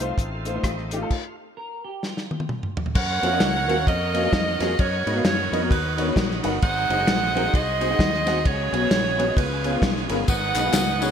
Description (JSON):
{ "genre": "uptempo gospel", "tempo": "131 BPM", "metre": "4/4", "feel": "swing 60% on 8ths", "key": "F# major", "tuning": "A4 = 440 Hz", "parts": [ { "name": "warm grand piano", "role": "accompaniment", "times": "0.0-11.1 s", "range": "G#2 to F#5", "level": "-27 LUFS", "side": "left 2 dB", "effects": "ensemble chorus" }, { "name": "mellow French horn section", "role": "sustained chords", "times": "0.0-1.1 s", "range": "F3 to C4", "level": "-43 LUFS", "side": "left 2 dB", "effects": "none" }, { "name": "overdriven tonewheel organ", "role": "sustained chords", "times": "0.0-11.1 s", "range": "Eb3 to A#4", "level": "-33 LUFS", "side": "right 2 dB", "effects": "slow rotary speaker" }, { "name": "fingered electric bass", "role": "bass", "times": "0.0-11.1 s", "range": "F#1 to G#2", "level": "-29 LUFS", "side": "equal", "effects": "none" }, { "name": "warm soul drum kit", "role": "drums", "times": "0.0-11.1 s", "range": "crash cymbal, hi-hat, kick drum, ride cymbal, rim click, snare drum, toms", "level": "-24 LUFS", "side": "equal", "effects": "gated reverb" }, { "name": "clean electric guitar", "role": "second line", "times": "1.6-2.7 s", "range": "F4 to Bb4", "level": "-36 LUFS", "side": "right 2 dB", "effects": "lush chorus" }, { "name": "clear saxophone section", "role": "melody", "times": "3.0-11.1 s", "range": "D#4 to F#5", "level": "-24 LUFS", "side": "right 3 dB", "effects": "ping-pong delay" }, { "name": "tambourine and handclaps", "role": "percussion", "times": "10.3-11.1 s", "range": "none", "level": "-30 LUFS", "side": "left 9 dB", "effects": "none" } ], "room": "moderate lush hall reverb, RT60 1.6 s, studio reverb", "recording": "bright 1980s-style digital production", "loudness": "-20 LUFS", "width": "side -8 dB against mid", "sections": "0.0-3.0 A section; 3.0-11.1 B section", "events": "stop 1.1-3.0; drum fill 2.0-3.0", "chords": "0.0 F7; 1.1 N.C.; 3.0 F#maj7; 4.8 Bmaj7; 6.6 G#7; 8.5 C#7sus4; 9.4 C#7; 10.3 G#m7", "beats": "0.18 0.64 | 1.11 1.57 2.03 2.49 | 2.96 3.42 3.88 4.33 | 4.79 5.25 5.71 6.17 | 6.62 7.08 7.54 8.00 | 8.45 8.91 9.37 9.82 | 10.28 10.74" }